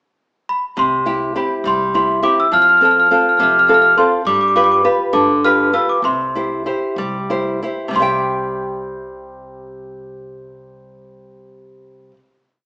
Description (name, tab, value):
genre	italian folk, Italian serenade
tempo	60-70 BPM (dotted quarters)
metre	6/8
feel	straight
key	C major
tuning	A4 = 440 Hz
part	worn celesta	melody	0.5-12.2 s	B5 to F6	-14 LUFS	equal	none
part	nylon-string guitar	accompaniment	0.8-12.2 s	C3 to G5	-18 LUFS	equal	none
part	upright bass	bass	0.8-12.2 s	C2 to G2	-34 LUFS	equal	none
room	wet large studio reverb, RT60 1.1 s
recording	band playing live in one room, small speaker sound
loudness	-13 LUFS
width	side -34 dB against mid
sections	0.0-0.8 pickup bar; 0.8-7.9 A section; 7.9-11.9 final chord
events	slowing down 4.2-7.9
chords	0.0 N.C.; 0.8 C; 2.5 F; 4.2 G7; 6.0 C